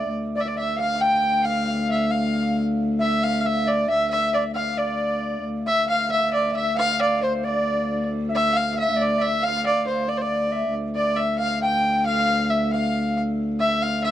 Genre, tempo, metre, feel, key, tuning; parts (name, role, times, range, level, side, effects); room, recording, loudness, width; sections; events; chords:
medieval dance; 90 BPM (dotted quarters); 6/8; straight; D minor; A4 = 440 Hz
dark fiddle; melody; 0.0-14.1 s; C5 to G5; -23 LUFS; right 1 dB
alto recorder; second line; 0.0-14.1 s; C5 to G5; -29 LUFS; left 4 dB
concert harp; second line; 0.0-14.1 s; C5 to G5; -31 LUFS; right 3 dB
warm viola da gamba; drone; 0.0-14.1 s; D2; -26 LUFS; left 1 dB; stereo widening
little or no reverb; dry, close 1970s-style studio recording; -20 LUFS; side -12 dB against mid
0.0-5.4 A section; 5.4-14.1 A section